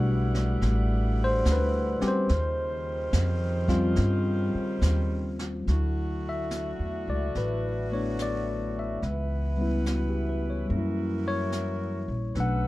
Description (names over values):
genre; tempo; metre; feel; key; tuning
jazz ballad; 72 BPM; 4/4; swing 67% on 8ths; D major; A4 = 440 Hz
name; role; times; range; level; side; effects
bright tine electric piano; accompaniment; 0.0-12.7 s; F#3 to F#5; -29 LUFS; left 2 dB; none
mellow saxophone section; sustained chords; 0.0-12.7 s; Db3 to F#5; -36 LUFS; right 3 dB; none
upright bass; bass; 0.0-12.7 s; A1 to G2; -27 LUFS; equal; none
jazz brush drum kit; drums; 0.3-12.7 s; brushed snare drum, hi-hat, kick drum, snare drum; -37 LUFS; right 2 dB; none
room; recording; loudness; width
little or no reverb; dark, warm production; -25 LUFS; side -18 dB against mid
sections
0.0-5.7 A section; 5.7-12.7 B section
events
none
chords
0.0 Em11; 2.3 Eb13; 5.7 Dmaj9; 9.0 C#m7b5; 10.7 F#7b9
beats
0.62 1.46 | 2.29 3.12 3.96 4.82 | 5.67 6.50 7.34 8.18 | 9.02 9.86 10.69 11.52 | 12.35